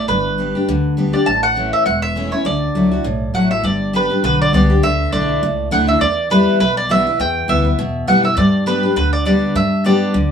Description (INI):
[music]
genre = bluegrass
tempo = 203 BPM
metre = 4/4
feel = swing 56% on 8ths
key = unclear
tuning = A4 = 440 Hz
[part]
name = mandolin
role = melody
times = 0.0-10.3 s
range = B4 to A5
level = -18 LUFS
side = right 2 dB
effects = none
[part]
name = picked steel-string acoustic guitar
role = accompaniment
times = 0.0-10.3 s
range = E2 to G4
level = -17 LUFS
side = left 2 dB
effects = none
[part]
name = upright bass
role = bass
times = 0.0-10.3 s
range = E1 to G2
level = -20 LUFS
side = equal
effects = none
[sound]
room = moderate studio reverb, RT60 0.8 s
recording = band playing live in one room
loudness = -14 LUFS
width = side -7 dB against mid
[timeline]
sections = 0.0-3.6 A section; 3.6-10.3 B section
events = none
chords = 0.1 G; 1.3 A; 2.5 Dadd9; 3.6 G; 4.8 Dsus2; 6.0 Em; 8.4 G